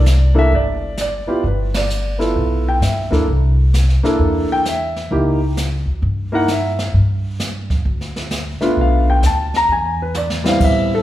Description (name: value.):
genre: jazz piano trio.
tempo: 131 BPM.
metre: 4/4.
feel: swing 66% on 8ths.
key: G mixolydian.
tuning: A4 = 440 Hz.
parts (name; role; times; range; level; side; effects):
warm concert grand piano; melody; 0.0-11.0 s; G3 to Bb5; -18 LUFS; equal; none.
upright bass; bass; 0.0-11.0 s; G1 to G2; -17 LUFS; equal; none.
jazz brush drum kit; drums; 0.1-11.0 s; brushed snare drum, crash cymbal, hi-hat, kick drum, ride cymbal, snare drum, toms; -23 LUFS; right 1 dB; none.
room: wet recital hall reverb, RT60 1.3 s.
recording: recorded in a church or concert hall.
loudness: -15 LUFS.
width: side -14 dB against mid.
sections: 0.0-11.0 A section.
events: band accent 1.7; drum fill 10.1-10.6.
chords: 0.0 Cadd9; 1.4 G13; 3.3 C13; 5.1 C#dim7; 6.9 G5; 8.8 Bm7b5; 9.7 E5.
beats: 0.06 0.52 0.97 | 1.43 1.89 2.35 2.81 | 3.27 3.73 4.19 4.65 | 5.11 5.56 6.02 6.48 | 6.94 7.40 7.85 8.31 | 8.77 9.23 9.69 10.14 | 10.60.